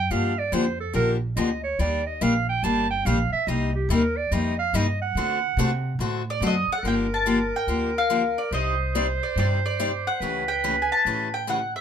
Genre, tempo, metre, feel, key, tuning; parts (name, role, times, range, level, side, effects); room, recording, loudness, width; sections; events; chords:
acoustic string swing (jazz manouche); 143 BPM; 4/4; swing 64% on 8ths; G minor; A4 = 440 Hz
bright clarinet; second line; 0.0-11.7 s; G4 to A5; -26 LUFS; right 4 dB
upright bass; bass; 0.0-11.7 s; G1 to D3; -27 LUFS; equal
picked steel-string acoustic guitar; accompaniment; 0.1-11.6 s; C3 to D5; -26 LUFS; left 4 dB
mandolin; melody; 6.3-11.8 s; D5 to A5; -26 LUFS; left 1 dB
moderate small room reverb, RT60 0.5 s; minimal, uncompressed stereo recording; -22 LUFS; side -8 dB against mid
0.0-6.8 A section; 6.8-11.8 B section
clarinet solo 0.0-6.8
0.1 Gm7; 1.8 Ebmaj7; 3.5 Cm7; 5.2 D7; 6.8 Gm7; 8.5 Cmadd9; 10.2 A7/C#